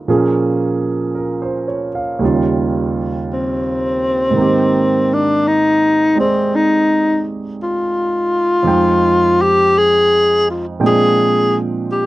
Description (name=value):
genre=jazz ballad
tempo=56 BPM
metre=4/4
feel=swing 68% on 8ths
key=unclear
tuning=A4 = 442 Hz
part: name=warm grand piano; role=accompaniment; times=0.0-12.1 s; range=Eb2 to G5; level=-17 LUFS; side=right 3 dB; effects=none
part: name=breathy tenor saxophone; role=melody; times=3.3-12.1 s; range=C4 to Ab4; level=-13 LUFS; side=left 1 dB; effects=none
room=little or no reverb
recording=dry, close 1970s-style studio recording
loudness=-13 LUFS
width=side -17 dB against mid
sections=0.0-12.1 A section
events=tenor saxophone solo 0.0-12.1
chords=0.1 Bbm7; 2.2 Eb9; 4.4 Abmaj9; 8.6 Fm7; 10.8 Bb13